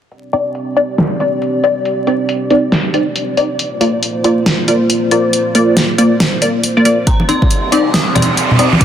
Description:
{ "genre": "deep dubstep", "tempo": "138 BPM", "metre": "4/4", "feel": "swing 62% on 16ths, half-time", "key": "C minor", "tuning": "A4 = 436 Hz", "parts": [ { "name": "dark analog pad", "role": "sustained chords", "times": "0.1-8.8 s", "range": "Bb3 to D5", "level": "-18 LUFS", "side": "right 1 dB", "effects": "chorus" }, { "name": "deep house drum kit", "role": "drums", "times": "0.1-8.8 s", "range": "hi-hat, snare drum", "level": "-17 LUFS", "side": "equal", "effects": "low-pass filter on hats, low-pass filter on snare, low-pass filter on room" }, { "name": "filtered dub chord stab", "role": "stabs", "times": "0.3-8.7 s", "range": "Bb3 to D5", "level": "-15 LUFS", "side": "left 1 dB", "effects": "phaser, analog chorus, cassette tape, dub echo" }, { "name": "dark detuned synth bell", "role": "melody", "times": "7.1-8.8 s", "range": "Bb5 to Eb6", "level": "-20 LUFS", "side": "right 2 dB", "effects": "chorus, dub echo" }, { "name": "electronic kick drum", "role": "drums", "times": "7.1-8.8 s", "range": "none", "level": "-12 LUFS", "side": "equal", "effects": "none" }, { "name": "riser", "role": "sound effects", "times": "7.5-8.8 s", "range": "none", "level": "-18 LUFS", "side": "right 3 dB", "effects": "none" }, { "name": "congas", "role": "percussion", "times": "7.2-8.8 s", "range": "none", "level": "-15 LUFS", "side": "equal", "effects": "none" } ], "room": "moderate huge ambient reverb, RT60 4.4 s", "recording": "dense, heavily limited modern master, vinyl crackle", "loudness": "-11 LUFS", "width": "side -9 dB against mid", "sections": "0.1-7.1 A section; 7.1-8.8 B section", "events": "filter sweep on drum 0.1-7.1; filter sweep on synth stab 0.1-7.1; build-up 7.1-8.8; riser 7.5-8.8", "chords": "0.1 Cmadd9; 3.6 Bb; 7.1 Cmadd9", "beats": "| 0.11 0.55 0.98 1.42 | 1.85 2.29 2.72 3.16 | 3.59 4.03 4.46 4.90 | 5.33 5.76 6.20 6.63 | 7.07 7.50 7.94 8.37 | 8.81" }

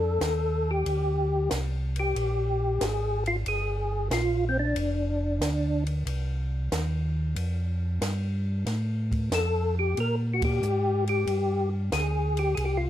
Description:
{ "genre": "soul jazz organ trio", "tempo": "92 BPM", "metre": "4/4", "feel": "swing 69% on 8ths", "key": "unclear", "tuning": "A4 = 440 Hz", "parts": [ { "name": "percussive tonewheel organ", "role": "melody", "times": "0.0-12.9 s", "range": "C4 to Bb4", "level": "-27 LUFS", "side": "left 1 dB", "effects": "slow rotary speaker, chorus vibrato, plate reverb" }, { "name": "mellow tonewheel organ", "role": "bass", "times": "0.0-12.9 s", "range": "F1 to Bb2", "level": "-27 LUFS", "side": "equal", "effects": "slow rotary speaker" }, { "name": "compact cocktail drum kit", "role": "drums", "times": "0.2-12.8 s", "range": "hi-hat, kick drum, ride cymbal, snare drum", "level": "-36 LUFS", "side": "equal", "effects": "none" } ], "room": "light reverb", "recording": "none", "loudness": "-25 LUFS", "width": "side -12 dB against mid", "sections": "0.0-12.9 A section", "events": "band accent 10.3-10.6", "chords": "0.0 F13; 2.2 Bb7(no3); 4.8 F13; 10.0 Bb6", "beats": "0.21 0.86 1.51 | 2.16 2.81 3.46 4.11 | 4.76 5.42 6.07 6.72 | 7.37 8.02 8.67 9.32 | 9.97 10.62 11.28 11.93 | 12.58" }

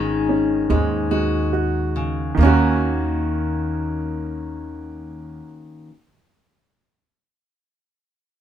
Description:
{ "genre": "acoustic folk duo or small band", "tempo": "70 BPM", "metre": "4/4", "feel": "straight", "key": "Eb minor", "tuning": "A4 = 440 Hz", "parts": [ { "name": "felt-muted upright piano", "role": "melody", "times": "0.0-1.5 s", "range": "Eb4", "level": "-43 LUFS", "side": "left 1 dB", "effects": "none" }, { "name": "fingerpicked steel-string acoustic guitar", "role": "accompaniment", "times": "0.0-5.9 s", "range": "Ab2 to Gb4", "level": "-24 LUFS", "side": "left 5 dB", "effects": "none" }, { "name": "warm upright piano", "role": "arpeggios", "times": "0.0-5.5 s", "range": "Eb3 to Gb4", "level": "-23 LUFS", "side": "right 6 dB", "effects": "none" }, { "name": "upright bass", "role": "bass", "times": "0.0-5.4 s", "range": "Ab1 to Eb2", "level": "-23 LUFS", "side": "right 1 dB", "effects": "none" } ], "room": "light reverb", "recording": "minimal, uncompressed stereo recording", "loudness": "-18 LUFS", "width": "side -10 dB against mid", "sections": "0.0-2.4 A section; 2.4-5.8 B section", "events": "slowing down 0.0-2.4", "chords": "0.0 Ab7sus4; 2.4 Ebm7", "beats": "0.70 1.53 | 2.38 3.24 4.10 4.95" }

